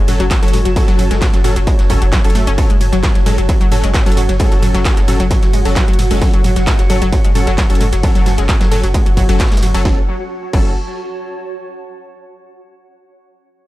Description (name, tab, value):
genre	driving peak-time techno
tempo	132 BPM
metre	4/4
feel	straight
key	F# minor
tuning	A4 = 440 Hz
part	analog pluck	riff	0.0-10.7 s	F#3 to C#4	-21 LUFS	left 1 dB	chorus, cassette tape, sidechain pumping, analog delay
part	saturated sub bass	bass	0.0-10.7 s	F#1	-16 LUFS	equal	tube saturation, sidechain pumping, low-pass filter
part	granular cloud pad	texture	0.0-11.6 s	F#4 to A5	-24 LUFS	right 1 dB	built-in reverb, sidechain pumping
part	supersaw stab	stabs	0.1-10.7 s	F#3 to A4	-22 LUFS	left 1 dB	sidechain pumping, analog delay
part	techno drum kit	drums	0.1-10.6 s	crash cymbal, handclaps, hi-hat, ride cymbal, snare drum, toms	-23 LUFS	equal	overdrive
part	vintage drum kit	drums	0.1-9.7 s	hi-hat, snare drum	-31 LUFS	equal	none
part	electronic kick drum	drums	0.3-10.6 s	none	-13 LUFS	equal	distortion, overdrive
room	digital ambience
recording	dry, gritty hardware recording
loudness	-11 LUFS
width	side -16 dB against mid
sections	0.0-9.9 A section; 9.9-11.7 B section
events	drop 0.0-9.9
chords	0.0 F#m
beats	0.31 | 0.76 1.22 1.67 2.12 | 2.58 3.04 3.49 3.94 | 4.40 4.85 5.31 5.76 | 6.22 6.67 7.12 7.58 | 8.04 8.49 8.94 9.40 | 9.85 10.31 10.76 11.22